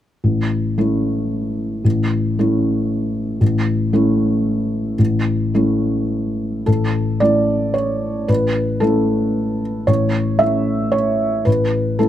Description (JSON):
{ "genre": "neoclassical minimalist piano", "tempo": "113 BPM", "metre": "3/4", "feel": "rubato", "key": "A major", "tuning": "A4 = 439 Hz", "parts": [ { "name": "felt-muted upright piano", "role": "solo", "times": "0.2-12.1 s", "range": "A1 to E5", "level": "-16 LUFS", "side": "equal", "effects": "none" } ], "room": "little or no reverb", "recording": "close, detailed microphones", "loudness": "-16 LUFS", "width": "side -11 dB against mid", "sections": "0.2-6.7 A section; 6.7-12.1 B section", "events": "none", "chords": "0.2 A", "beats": "| 0.23 0.78 1.31 | 1.85 2.38 2.90 | 3.41 3.93 4.46 | 4.99 5.54 6.10 | 6.67 7.21 7.76 | 8.29 8.82 9.35 | 9.88 10.41 10.94 | 11.47 11.99" }